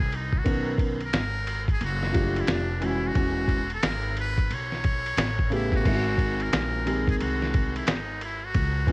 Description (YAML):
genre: hip hop, jazz-hop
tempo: 89 BPM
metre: 4/4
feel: swing 64% on 16ths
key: unclear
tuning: A4 = 439 Hz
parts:
  - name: trumpet with metal mute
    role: melody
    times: 0.0-8.9 s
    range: D4 to C#5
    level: -31 LUFS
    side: equal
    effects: cassette tape
  - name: upright bass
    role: bass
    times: 0.0-8.9 s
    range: E1 to C#2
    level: -30 LUFS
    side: equal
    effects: none
  - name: lo-fi sampler-style drum kit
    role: drums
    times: 0.1-8.9 s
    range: crash cymbal, hi-hat, kick drum, ride cymbal, snare drum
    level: -26 LUFS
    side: equal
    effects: cassette tape
  - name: dark grand piano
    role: accompaniment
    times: 0.4-8.9 s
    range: C#3 to A#4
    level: -28 LUFS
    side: equal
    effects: cassette tape
room: small room reverb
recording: home recording on cassette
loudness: -23 LUFS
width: side -24 dB against mid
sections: 0.0-5.8 A section; 5.8-8.9 A section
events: none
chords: 0.5 Bmaj9; 2.5 F69; 3.2 E69; 5.2 A9; 5.8 G#7